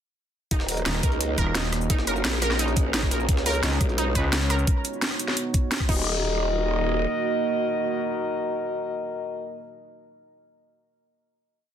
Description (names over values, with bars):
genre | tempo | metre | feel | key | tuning
dark technical drum and bass | 173 BPM | 4/4 | straight | Eb minor | A4 = 440 Hz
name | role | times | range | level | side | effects
dark analog pad | sustained chords | 0.7-9.6 s | Ab3 to Eb5 | -32 LUFS | right 3 dB | chorus, sidechain pumping
wide unison pluck | arpeggios | 0.5-6.2 s | Eb4 to Cb5 | -30 LUFS | right 2 dB | sidechain pumping, dub echo
growl bass | bass | 0.5-7.1 s | Eb1 to Db2 | -26 LUFS | equal | chorus, overdrive, sidechain pumping
drum and bass drum kit | drums | 0.5-6.0 s | crash cymbal, hi-hat, rim click, shaker, snare drum | -27 LUFS | equal | overdrive
electronic kick drum | drums | 0.5-6.0 s | none | -24 LUFS | equal | none
jungle sampler-style drum kit | drums | 0.5-4.6 s | hi-hat, snare drum | -36 LUFS | equal | none
mellow brass ensemble | stabs | 0.7-3.5, 5.9-9.6 s | F4 to Eb5 | -28 LUFS | left 2 dB | dub echo
growling FM bass | bass | 0.9-4.7 s | Eb1 to Db2 | -25 LUFS | equal | none
room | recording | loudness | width
light reverb | dense, heavily limited modern master | -22 LUFS | side -9 dB against mid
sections
0.5-6.1 drop; 6.1-8.8 final hit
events
drop 0.5-6.1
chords
0.5 Ebm; 1.9 Gb; 3.3 Db; 4.7 Badd9; 5.9 Ebm